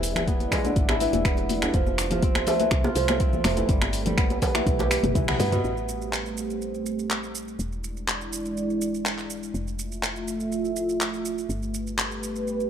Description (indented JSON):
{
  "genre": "afro house",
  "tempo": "123 BPM",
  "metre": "4/4",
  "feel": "straight",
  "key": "A minor",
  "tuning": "A4 = 440 Hz",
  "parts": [
    { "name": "dark analog pad", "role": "sustained chords", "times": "0.0-12.7 s", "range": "G#3 to E5", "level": "-30 LUFS", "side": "right 1 dB", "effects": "chorus, sidechain pumping" },
    { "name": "kora", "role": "arpeggios", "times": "0.0-7.3 s", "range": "B2 to A4", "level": "-27 LUFS", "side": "right 2 dB", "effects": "sidechain pumping, digital delay" },
    { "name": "woody FM bass", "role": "bass", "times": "0.0-12.7 s", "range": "E1 to G2", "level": "-31 LUFS", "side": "equal", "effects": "sidechain pumping" },
    { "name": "deep house drum kit", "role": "drums", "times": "0.0-12.7 s", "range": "finger snaps, handclaps, hi-hat, shaker, toms", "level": "-29 LUFS", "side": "equal", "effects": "overdrive" },
    { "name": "congas", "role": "percussion", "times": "0.2-5.5 s", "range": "none", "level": "-31 LUFS", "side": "left 5 dB", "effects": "none" },
    { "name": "djembe", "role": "percussion", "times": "0.2-5.6 s", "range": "none", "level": "-33 LUFS", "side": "right 3 dB", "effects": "none" },
    { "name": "electronic kick drum", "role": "drums", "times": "0.3-5.3 s", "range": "none", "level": "-25 LUFS", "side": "equal", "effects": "none" }
  ],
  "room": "light reverb, digital ambience",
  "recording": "none",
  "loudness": "-23 LUFS",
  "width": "side -8 dB against mid",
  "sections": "0.0-5.6 A section; 5.6-12.7 B section",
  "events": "drum fill 4.7-5.6; band accent 5.3",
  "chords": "0.0 E7; 1.7 Fmaj7; 3.7 Gadd9; 5.6 Am7; 7.6 E7; 9.5 Fmaj7; 11.5 Gadd9",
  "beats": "0.28 0.76 1.25 | 1.74 2.23 2.71 3.20 | 3.69 4.18 4.67 5.15 | 5.64 6.13 6.62 7.11 | 7.59 8.08 8.57 9.06 | 9.54 10.03 10.52 11.01 | 11.49 11.98 12.47"
}